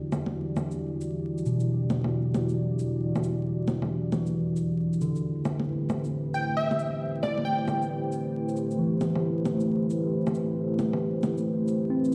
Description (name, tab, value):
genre	future garage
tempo	135 BPM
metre	4/4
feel	swing 65% on 16ths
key	unclear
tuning	A4 = 440 Hz
part	mellow tine electric piano	accompaniment	0.0-12.1 s	B2 to C4	-32 LUFS	equal	low-pass filter, analog delay
part	dark analog pad	sustained chords	0.0-12.1 s	E3 to D5	-32 LUFS	equal	chorus, vintage 12-bit sampler grit
part	bongos and shaker	drums	0.1-12.1 s	none	-34 LUFS	equal	vintage 12-bit sampler grit, studio reverb
part	plucky unison lead	melody	6.3-7.8 s	D5 to G5	-32 LUFS	equal	analog delay
room	moderate recital hall reverb, RT60 1.7 s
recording	played on a big sound system in a bare room, stone room reverb, vinyl crackle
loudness	-28 LUFS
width	mono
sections	0.0-12.1 A section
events	filter sweep on tine electric piano 0.0-12.1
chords	0.0 Em7; 5.2 Am7